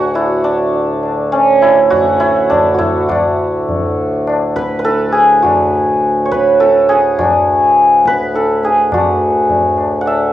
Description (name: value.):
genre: indian classical, Hindustani.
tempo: 103 BPM.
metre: 5/4.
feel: straight.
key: D raga yaman.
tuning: A4 = 441 Hz.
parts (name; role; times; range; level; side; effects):
santur; melody; 0.0-10.3 s; C#4 to F#5; -11 LUFS; right 1 dB; cassette tape.
pedal harmonium; drone; 0.0-10.3 s; D2 to A2; -19 LUFS; equal; cassette tape.
tabla; percussion; 0.1-10.3 s; none; -20 LUFS; left 3 dB; none.
room: wet small room reverb, RT60 0.5 s.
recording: home recording on cassette.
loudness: -10 LUFS.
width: side -13 dB against mid.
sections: 0.0-8.9 A section; 8.9-10.3 B section.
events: speeding up 0.0-10.3.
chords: none.